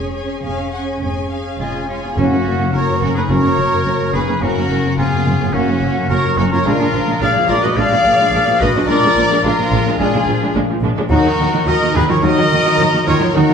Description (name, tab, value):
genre	cinematic, heroic adventure film score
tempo	107 BPM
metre	4/4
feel	straight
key	F# major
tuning	A4 = 436 Hz
part	warm studio violin section	melody	0.0-13.5 s	Db4 to Ab5	-24 LUFS	left 3 dB	none
part	warm symphonic violin section	second line	0.0-13.5 s	F4 to Ab5	-26 LUFS	left 1 dB	none
part	warm symphonic viola section	accompaniment	0.0-13.5 s	D#3 to Ab4	-23 LUFS	right 2 dB	none
part	concert harp	arpeggios	0.0-13.5 s	F2 to A#4	-24 LUFS	left 6 dB	none
part	rich symphonic double bass section	bass	0.0-13.4 s	F1 to D#2	-22 LUFS	right 2 dB	none
part	warm symphonic cello section	bass	0.0-13.5 s	F#2 to Db4	-23 LUFS	right 3 dB	none
part	clear clarinet	second line	1.6-13.5 s	Ab3 to G#4	-24 LUFS	left 1 dB	none
part	clear oboe	second line	1.6-13.5 s	C#4 to D5	-25 LUFS	equal	none
part	mellow hollow silver concert flute	second line	1.6-13.5 s	F5 to E#6	-24 LUFS	equal	none
part	mellow trumpet section	stabs	1.6-13.5 s	F4 to E#5	-20 LUFS	left 1 dB	none
part	mellow French horn section	sustained chords	2.2-13.5 s	F#3 to D#4	-21 LUFS	left 1 dB	none
part	timpani	percussion	2.2-3.0 s	F#2	-26 LUFS	left 2 dB	none
room	wet recital hall reverb, RT60 1.3 s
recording	recorded in a church or concert hall, nothing above 10.5 kHz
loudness	-13 LUFS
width	side -6 dB against mid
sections	0.0-2.2 A section; 2.2-13.5 B section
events	none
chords	0.0 Db/F; 2.2 F#; 6.7 A#7; 11.1 D#m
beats	0.43 1.02 1.60 | 2.17 2.74 3.30 3.86 | 4.42 4.98 5.54 6.10 | 6.66 7.21 7.77 8.33 | 8.89 9.44 10.00 10.55 | 11.11 11.68 12.23 12.79 | 13.35